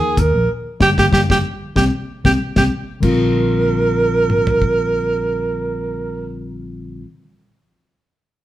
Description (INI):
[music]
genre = electric jazz fusion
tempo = 94 BPM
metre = 4/4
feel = swing 54% on 16ths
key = unclear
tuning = A4 = 441 Hz
[part]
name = clear alto saxophone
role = melody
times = 0.0-6.3 s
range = G4 to Bb4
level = -18 LUFS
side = right 3 dB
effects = none
[part]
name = mellow tine electric piano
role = accompaniment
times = 0.0-7.0 s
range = D3 to Bb4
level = -21 LUFS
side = left 3 dB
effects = none
[part]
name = fingered electric bass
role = bass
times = 0.2-7.0 s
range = G1 to Eb2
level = -22 LUFS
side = equal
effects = none
[part]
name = damped 70s drum kit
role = drums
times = 0.2-4.8 s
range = crash cymbal, hi-hat, kick drum, snare drum, toms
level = -21 LUFS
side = equal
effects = none
[sound]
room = moderate large studio reverb, RT60 1.3 s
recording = band playing live in one room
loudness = -15 LUFS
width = side -14 dB against mid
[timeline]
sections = 0.0-3.0 A section; 3.0-5.6 B section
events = band accent 0.5-3.0; drum fill 1.8-3.0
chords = 0.5 Gdim; 1.8 C5; 3.0 Bbadd9